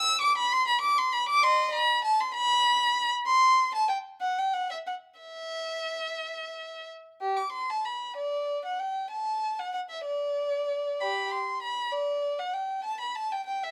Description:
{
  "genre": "classical, baroque-style suite movement for unaccompanied violin",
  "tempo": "59-66 BPM (dotted quarters)",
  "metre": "6/8",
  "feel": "rubato",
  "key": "E minor",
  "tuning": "A4 = 436 Hz",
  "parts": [
    { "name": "dark violin", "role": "solo", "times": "0.0-13.7 s", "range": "G4 to E6", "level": "-28 LUFS", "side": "equal", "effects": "none" }
  ],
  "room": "light reverb",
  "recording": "none",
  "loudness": "-28 LUFS",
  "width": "mono",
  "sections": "0.0-7.2 A section; 7.2-13.7 A section",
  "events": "none",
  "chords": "none",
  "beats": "0.52 | 1.44 2.35 | 3.27 4.22 | 5.21 6.21 | 7.21 8.17 | 9.12 10.06 | 11.01 11.93 | 12.85"
}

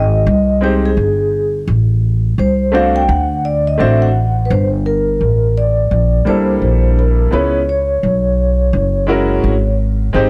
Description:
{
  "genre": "hip hop, jazz-hop",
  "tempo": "85 BPM",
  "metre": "4/4",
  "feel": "swing 62% on 16ths",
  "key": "unclear",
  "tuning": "A4 = 440 Hz",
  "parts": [
    { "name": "vibraphone with soft mallets", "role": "melody", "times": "0.0-9.8 s", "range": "Ab4 to G5", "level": "-20 LUFS", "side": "equal", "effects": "none" },
    { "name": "upright bass", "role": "bass", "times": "0.0-10.3 s", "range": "F#1 to D2", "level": "-16 LUFS", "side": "equal", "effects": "none" },
    { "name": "clear upright piano", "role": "accompaniment", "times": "0.6-10.3 s", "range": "G3 to C5", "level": "-19 LUFS", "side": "equal", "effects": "none" }
  ],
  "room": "studio reverb",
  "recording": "dry, gritty hardware recording",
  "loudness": "-14 LUFS",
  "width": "mono",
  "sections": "0.0-4.5 A section; 4.5-10.3 B section",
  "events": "vibraphone solo 0.0-4.5",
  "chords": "0.0 Abmaj7; 1.7 D7; 4.5 Gm69; 7.3 C#m7; 8.7 F#9",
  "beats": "0.26 0.97 | 1.67 2.38 3.08 3.79 | 4.50 5.20 5.91 6.61 | 7.32 8.03 8.73 9.44 | 10.14"
}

